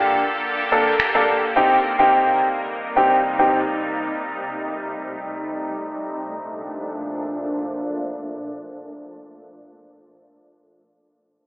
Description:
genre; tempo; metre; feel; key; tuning
dance-pop; 107 BPM; 4/4; straight; Bb major; A4 = 440 Hz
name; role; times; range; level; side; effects
warm baby grand piano; accompaniment; 0.0-3.6 s; Bb3 to A4; -16 LUFS; equal; low-pass filter
shimmering ambient pad; sustained chords; 0.0-9.0 s; Bb2 to A4; -24 LUFS; equal; chorus, built-in reverb, low-pass filter
electronic finger snaps; drums; 1.0-1.1 s; none; -26 LUFS; equal; none
room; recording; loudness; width
moderate plate reverb, RT60 2.2 s; played on a big sound system in a bare room, large studio reverb, telephone sound; -18 LUFS; side -30 dB against mid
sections
0.0-6.0 A section; 6.0-8.3 B section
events
filter sweep 0.0-6.0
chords
0.0 Bbmaj7; 1.6 Eb6; 6.0 Bbmaj7

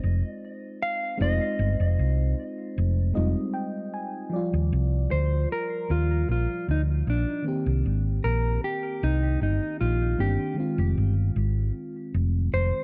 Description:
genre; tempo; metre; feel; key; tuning
lovers rock reggae; 77 BPM; 4/4; straight; Eb major; A4 = 439 Hz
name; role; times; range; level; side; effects
mellow electric guitar; melody; 0.0-12.8 s; D4 to F5; -32 LUFS; equal; tape echo
mellow FM electric piano; accompaniment; 0.0-12.8 s; Eb3 to Ab5; -34 LUFS; equal; chorus
hollow-body short-scale fingered electric bass; bass; 0.0-12.7 s; F1 to Eb2; -26 LUFS; equal; none
room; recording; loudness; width
little or no reverb; dark, warm production; -26 LUFS; mono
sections
0.0-4.3 A section; 4.3-12.8 B section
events
FM electric piano fill 2.8-4.3; clean electric guitar solo 4.3-12.8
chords
0.0 Fm7; 4.3 Ebmaj9; 7.4 Cm7; 10.6 Fm7

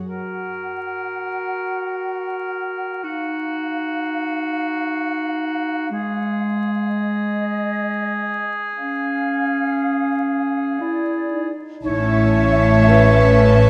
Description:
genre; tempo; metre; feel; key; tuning
cinematic, emotional film score for orchestra; 56-63 BPM; 3/4; rubato; unclear; A4 = 439 Hz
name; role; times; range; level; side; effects
clear oboe; second line; 0.1-13.7 s; Gb4 to C#5; -28 LUFS; equal; none
mellow large flute ensemble; second line; 0.1-13.7 s; D5 to Gb5; -30 LUFS; equal; none
warm clarinet; second line; 0.1-13.7 s; Ab3 to C#5; -26 LUFS; equal; none
mellow French horn section; sustained chords; 11.3-13.7 s; Eb4 to B4; -22 LUFS; equal; none
warm chamber viola section; accompaniment; 11.8-13.7 s; C#4; -28 LUFS; equal; none
warm symphonic violin section; melody; 11.9-13.7 s; A5; -32 LUFS; equal; none
warm symphonic violin section; second line; 11.9-13.7 s; E5; -32 LUFS; equal; none
dark studio double bass section; bass; 11.9-13.7 s; A1; -20 LUFS; equal; none
rich symphonic cello section; bass; 11.9-13.7 s; A2; -21 LUFS; equal; none
room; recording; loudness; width
moderate scoring stage reverb, RT60 1.8 s; vinyl crackle; -20 LUFS; mono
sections
0.1-11.9 A section; 11.9-13.7 B section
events
none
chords
0.1 Gb; 3.0 Ebmadd9; 5.9 Ab5; 8.8 Db; 10.8 E7; 11.9 A

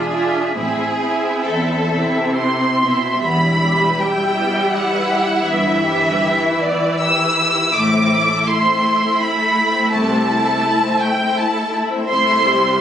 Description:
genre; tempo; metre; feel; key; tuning
classical, slow romantic movement for string orchestra; 62-85 BPM; 3/4; rubato; A minor, E minor from 3.2 s; A4 = 440 Hz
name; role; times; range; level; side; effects
rich studio violin section; melody; 0.0-12.8 s; D5 to E6; -17 LUFS; equal; none
rich studio violin section; second line; 0.0-12.8 s; A3 to E5; -23 LUFS; left 2 dB; none
rich studio viola section; accompaniment; 0.0-12.8 s; E3 to F4; -21 LUFS; right 1 dB; none
rich studio cello section; bass; 0.0-12.8 s; E2 to C3; -23 LUFS; left 1 dB; none
warm studio double bass section; bass; 0.0-12.8 s; E1 to C2; -28 LUFS; equal; none
room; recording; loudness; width
moderate large studio reverb, RT60 0.8 s; recorded on a phone in the room, club reverb, compression; -14 LUFS; side -9 dB against mid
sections
0.0-3.2 A section; 3.2-12.8 B section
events
none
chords
0.0 E7b9; 0.6 Am; 3.2 Em; 5.5 Em/G; 7.7 Am; 9.9 Am/C

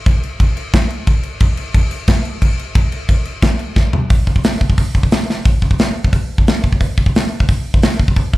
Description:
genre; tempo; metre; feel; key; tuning
metal; 178 BPM; 4/4; straight; none; none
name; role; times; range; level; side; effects
modern studio drum kit; drums; 0.1-8.4 s; crash cymbal, hi-hat, kick drum, snare drum, toms; -13 LUFS; equal; none
room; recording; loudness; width
light reverb; live gig heard through the venue's PA, club reverb; -13 LUFS; side -18 dB against mid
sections
0.0-4.1 A section; 4.1-5.5 B section; 5.5-8.4 C section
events
half time 0.0-4.1; drum fill 3.8-4.1, 5.3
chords
none

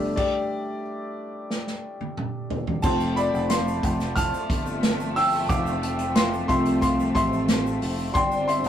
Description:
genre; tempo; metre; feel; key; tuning
piano-driven pop; 90 BPM; 4/4; straight; unclear; A4 = 440 Hz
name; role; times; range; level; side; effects
warm concert grand piano; accompaniment; 0.0-8.7 s; F3 to F6; -25 LUFS; left 1 dB; none
dark studio string section; sustained chords; 0.0-8.7 s; D3 to D4; -28 LUFS; equal; none
fingered electric bass; bass; 0.0-8.7 s; F1 to C2; -30 LUFS; equal; none
unplugged drum kit; drums; 0.2-8.7 s; crash cymbal, hi-hat, kick drum, snare drum, toms; -26 LUFS; right 1 dB; none
egg shaker; percussion; 2.8-8.7 s; none; -47 LUFS; right 3 dB; none
room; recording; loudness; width
wet small room reverb, RT60 0.5 s; rough rehearsal-room recording; -22 LUFS; side -10 dB against mid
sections
0.0-2.8 A section; 2.8-8.7 B section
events
grand piano solo 0.0-2.8, 2.8-8.7; stop 0.2-2.8; drum fill 1.5-2.8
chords
0.0 Gsus2; 2.8 F; 8.2 Csus2/G

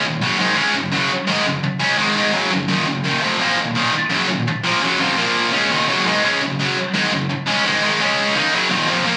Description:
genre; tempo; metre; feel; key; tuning
metal; 170 BPM; 4/4; straight; unclear; A4 = 440 Hz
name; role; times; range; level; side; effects
high-gain distorted guitar; solo; 0.0-9.2 s; Eb2 to Eb4; -18 LUFS; equal; distortion
room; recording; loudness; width
moderate studio reverb, RT60 0.6 s; recorded on a phone in the room, club reverb; -18 LUFS; mono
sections
0.0-8.7 A section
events
none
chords
0.2 Gb5; 3.0 Ebm; 5.2 Bb5; 5.5 Eb5; 5.9 Gb5; 8.0 Db5; 8.4 Gb5

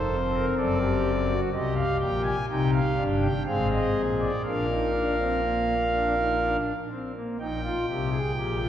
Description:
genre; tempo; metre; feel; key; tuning
classical, baroque-style 4-part fugue for pipe organ; 62 BPM; 3/4; straight; Eb major; A4 = 440 Hz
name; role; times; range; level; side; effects
pipe organ, foundations; solo; 0.0-8.7 s; F1 to Ab5; -23 LUFS; equal; none
room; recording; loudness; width
wet church reverb, RT60 2.8 s; heard from further back in the room; -23 LUFS; side -10 dB against mid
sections
0.0-7.4 A section; 7.4-8.7 B section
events
none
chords
0.0 Am; 0.6 D7/F#; 1.5 Cm; 3.5 Ab; 4.5 Bb; 7.4 Eb/Bb

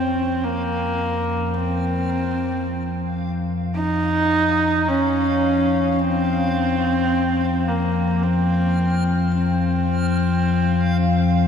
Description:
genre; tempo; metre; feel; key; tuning
dark ambient drone; free time; none; none; unclear; A4 = 439 Hz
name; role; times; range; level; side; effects
rich horsehead fiddle; melody; 0.0-11.5 s; Bb3 to Eb4; -21 LUFS; equal; tape echo
deep rumbling drone; drone; 0.0-11.5 s; F2 to F3; -21 LUFS; left 2 dB; built-in reverb
backwards swelling texture; texture; 0.0-11.5 s; F5; -33 LUFS; right 2 dB; built-in reverb
room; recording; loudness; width
wet cathedral reverb, RT60 6.4 s; in a vast, echoing space; -18 LUFS; side -7 dB against mid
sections
0.0-11.5 A section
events
fade-in on synth texture 0.0-11.5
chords
none

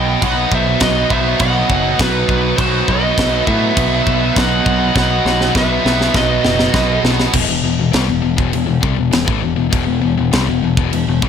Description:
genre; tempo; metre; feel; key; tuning
heavy metal; 101 BPM; 4/4; straight; unclear; A4 = 440 Hz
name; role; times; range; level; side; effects
high-gain lead guitar; melody; 0.0-7.0 s; B4 to G5; -20 LUFS; equal; distortion, ping-pong delay
bluesy overdriven lead guitar; second line; 0.0-7.0 s; F#4 to D#5; -26 LUFS; right 3 dB; distortion, ping-pong delay
heavy high-gain guitar; riff; 0.0-11.3 s; E2 to D#4; -19 LUFS; left 14 dB; distortion
heavy high-gain guitar; riff; 0.0-7.3 s; B2 to B3; -19 LUFS; right 14 dB; distortion
growling picked electric bass; bass; 0.0-11.3 s; E1 to A2; -19 LUFS; equal; overdrive
tight metal drum kit; drums; 0.2-11.3 s; crash cymbal, kick drum, snare drum; -19 LUFS; equal; none
room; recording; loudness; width
studio ambience; none; -12 LUFS; side -8 dB against mid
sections
0.0-7.3 A section; 7.3-11.3 B section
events
drum fill 5.0-7.3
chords
0.0 B; 7.3 Em

